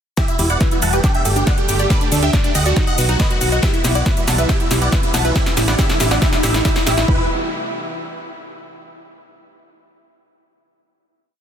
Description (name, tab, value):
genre	uplifting trance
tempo	139 BPM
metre	4/4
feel	straight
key	E minor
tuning	A4 = 440 Hz
part	big supersaw lead	melody	0.2-7.2 s	D4 to A5	-21 LUFS	right 1 dB	phaser, vintage 12-bit sampler grit, sidechain pumping, dub echo
part	supersaw pad	sustained chords	0.2-7.3 s	C3 to G4	-28 LUFS	equal	sidechain pumping
part	analog pluck	arpeggios	0.2-7.3 s	D4 to G5	-27 LUFS	right 4 dB	chorus, sidechain pumping, digital delay
part	big-room dance drum kit	drums	0.2-7.1 s	hi-hat, shaker, snare drum	-23 LUFS	equal	high-pass filter on snare, studio reverb, sidechain pumping on hats, high-pass filter on hats, sidechain pumping on perc, high-pass filter on perc
part	electronic kick drum	drums	0.2-7.2 s	none	-18 LUFS	equal	studio reverb
part	riser	sound effects	2.9-7.1 s	none	-28 LUFS	equal	none
part	solid FM bass	bass	0.4-7.3 s	E1 to D2	-19 LUFS	equal	sidechain pumping
room	little or no reverb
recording	dense, heavily limited modern master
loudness	-14 LUFS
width	side -8 dB against mid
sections	0.2-7.1 build; 7.1-8.8 final chord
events	build-up 0.2-7.1; drum fill 0.2-7.1; riser 2.9-7.1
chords	0.2 Emadd9; 1.0 Gsus2; 1.9 Dsus4; 2.8 B; 3.6 Emadd9/B; 5.4 Am; 7.1 Emadd9